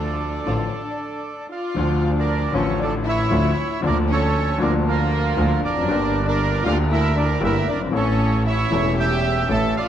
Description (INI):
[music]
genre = tango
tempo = 116 BPM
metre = 4/4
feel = rubato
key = D harmonic minor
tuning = A4 = 441 Hz
[part]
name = bandoneon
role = melody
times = 0.0-9.9 s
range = F4 to A5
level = -25 LUFS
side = right 4 dB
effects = none
[part]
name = warm chamber violin section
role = second line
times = 0.0-9.9 s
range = Bb3 to A4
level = -26 LUFS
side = left 2 dB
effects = none
[part]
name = warm baby grand piano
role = accompaniment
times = 0.0-9.7 s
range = E1 to A4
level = -24 LUFS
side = left 3 dB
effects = none
[part]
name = bright studio string section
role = stabs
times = 0.0-0.7 s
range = A3 to F4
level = -37 LUFS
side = right 1 dB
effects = none
[part]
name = clear double bass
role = bass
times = 0.0-9.7 s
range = E1 to D2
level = -22 LUFS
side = right 1 dB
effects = none
[sound]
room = moderate scoring stage reverb, RT60 1.6 s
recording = dark, warm production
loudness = -18 LUFS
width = side -10 dB against mid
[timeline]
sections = 0.0-1.8 A section; 1.8-9.9 B section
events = stop 0.7-1.8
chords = 0.0 Dm; 3.8 Bb/D; 5.9 Gmadd9; 7.9 A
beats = 0.19 0.71 1.24 | 1.76 2.28 2.80 3.32 | 3.83 4.35 4.86 5.38 | 5.89 6.40 6.91 7.42 | 7.94 8.46 8.98 9.50